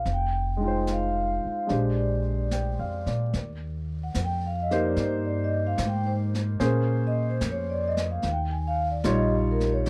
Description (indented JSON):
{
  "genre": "jazz",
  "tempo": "73 BPM",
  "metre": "4/4",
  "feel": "swing 69% on 8ths",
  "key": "Eb major",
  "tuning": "A4 = 440 Hz",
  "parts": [
    { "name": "vibraphone with soft mallets", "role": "melody", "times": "0.0-9.9 s", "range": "G4 to Ab5", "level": "-32 LUFS", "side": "equal", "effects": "none" },
    { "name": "warm concert grand piano", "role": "accompaniment", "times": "0.0-9.9 s", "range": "G3 to G5", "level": "-31 LUFS", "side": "equal", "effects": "none" },
    { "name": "upright bass", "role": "bass", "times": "0.1-9.9 s", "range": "F1 to Bb2", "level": "-30 LUFS", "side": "equal", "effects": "none" },
    { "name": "jazz brush drum kit", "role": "drums", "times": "0.1-9.9 s", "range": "brushed snare drum, hi-hat, snare drum", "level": "-37 LUFS", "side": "equal", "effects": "none" }
  ],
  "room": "light reverb",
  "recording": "none",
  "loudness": "-27 LUFS",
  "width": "mono",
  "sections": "0.0-3.3 A section; 3.3-9.9 B section",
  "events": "vibraphone solo 3.3-9.9",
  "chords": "0.1 Fm7; 1.7 Bb13; 3.3 Eb6; 6.6 Bbm9; 8.2 Eb9"
}